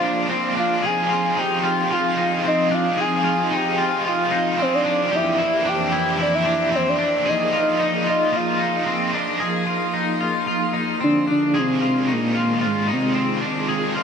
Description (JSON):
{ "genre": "dream pop", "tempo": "112 BPM", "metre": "4/4", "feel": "straight", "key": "F dorian", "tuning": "A4 = 440 Hz", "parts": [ { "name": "soft octave-layered synth lead", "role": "melody", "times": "0.0-13.4 s", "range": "Ab3 to Ab5", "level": "-22 LUFS", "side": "equal", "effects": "chorus, tremolo, digital delay" }, { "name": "overdriven electric guitar", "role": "accompaniment", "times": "0.0-14.0 s", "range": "F2 to G4", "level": "-28 LUFS", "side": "right 3 dB", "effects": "tremolo, wide subtle chorus" }, { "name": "string machine, violas", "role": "sustained chords", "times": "0.0-14.0 s", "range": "F2 to C5", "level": "-26 LUFS", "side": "equal", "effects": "phaser, ensemble chorus" }, { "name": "electric guitar at the edge of break-up", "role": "arpeggios", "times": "0.0-14.0 s", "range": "C4 to Ab4", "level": "-23 LUFS", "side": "left 2 dB", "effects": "wide subtle chorus, digital delay" } ], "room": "wet shimmer reverb, RT60 6.1 s", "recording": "none", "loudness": "-18 LUFS", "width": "side -6 dB against mid", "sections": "0.0-9.4 A section; 9.4-11.5 B section; 11.5-14.0 C section", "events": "none", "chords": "0.0 Bb9/F; 0.8 Fm7; 5.1 C9/F; 7.3 Bb7sus4; 11.5 Fm7" }